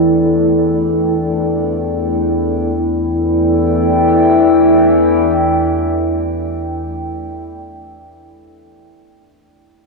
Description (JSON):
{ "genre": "dark ambient drone", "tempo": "free time", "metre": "none", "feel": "none", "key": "E minor", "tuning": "A4 = 440 Hz", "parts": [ { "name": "dark analog pad", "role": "sustained chords", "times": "0.0-7.4 s", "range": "E4 to G5", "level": "-15 LUFS", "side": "right 1 dB", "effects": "lush chorus" }, { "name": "analog drone", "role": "drone", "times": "0.0-6.9 s", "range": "E2 to E3", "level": "-16 LUFS", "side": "left 2 dB", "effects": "chorus" } ], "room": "wet cathedral reverb, RT60 5.1 s", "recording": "small room ambience", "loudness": "-12 LUFS", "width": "side -2 dB against mid", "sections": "0.0-2.7 A section; 2.7-6.6 B section", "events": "none", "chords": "0.0 Em" }